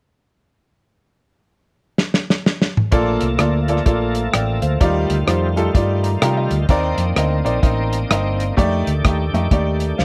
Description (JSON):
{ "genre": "uptempo gospel", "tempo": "127 BPM", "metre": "4/4", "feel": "swing 61% on 8ths", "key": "Bb major", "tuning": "A4 = 440 Hz", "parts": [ { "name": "warm soul drum kit", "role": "drums", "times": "2.0-10.0 s", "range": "hi-hat, kick drum, rim click, snare drum, toms", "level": "-20 LUFS", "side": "equal", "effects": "none" }, { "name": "clear baby grand piano", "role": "accompaniment", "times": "2.9-10.0 s", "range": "Bb2 to Bb5", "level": "-22 LUFS", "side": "equal", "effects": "none" }, { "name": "bright tonewheel organ", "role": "sustained chords", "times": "2.9-10.0 s", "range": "Eb3 to A4", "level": "-28 LUFS", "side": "equal", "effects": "slow rotary speaker, overdrive, chorus vibrato" }, { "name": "hollow-body short-scale fingered electric bass", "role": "bass", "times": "2.9-10.0 s", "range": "G1 to C3", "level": "-23 LUFS", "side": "equal", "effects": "none" } ], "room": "light reverb", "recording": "none", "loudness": "-18 LUFS", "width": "mono", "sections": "1.0-2.9 A section; 2.9-10.0 B section", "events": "drum fill 2.0-2.9; grand piano fill 5.7-6.7", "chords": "1.0 N.C.; 2.9 Bbmaj7; 4.8 Ebmaj9; 6.7 Cm9; 8.6 F13" }